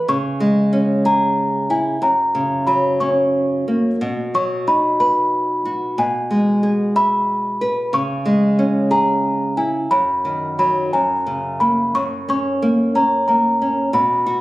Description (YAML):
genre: children's music, lullaby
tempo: 61 BPM (dotted quarters)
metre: 6/8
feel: rubato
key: unclear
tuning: A4 = 436 Hz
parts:
  - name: celesta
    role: melody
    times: 0.0-14.4 s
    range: G#5 to C#6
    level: -18 LUFS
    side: equal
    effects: none
  - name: nylon-string guitar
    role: accompaniment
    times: 0.0-14.4 s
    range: F#2 to E5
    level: -18 LUFS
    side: equal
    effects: none
room: moderate recital hall reverb, RT60 1.5 s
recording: recorded on a phone in the room, club reverb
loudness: -16 LUFS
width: side -18 dB against mid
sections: 0.0-11.9 A section; 11.9-14.4 B section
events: none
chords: 0.1 C#m; 2.0 F#; 4.0 B; 6.0 E/B; 7.9 C#m; 9.9 B/F#; 10.9 F#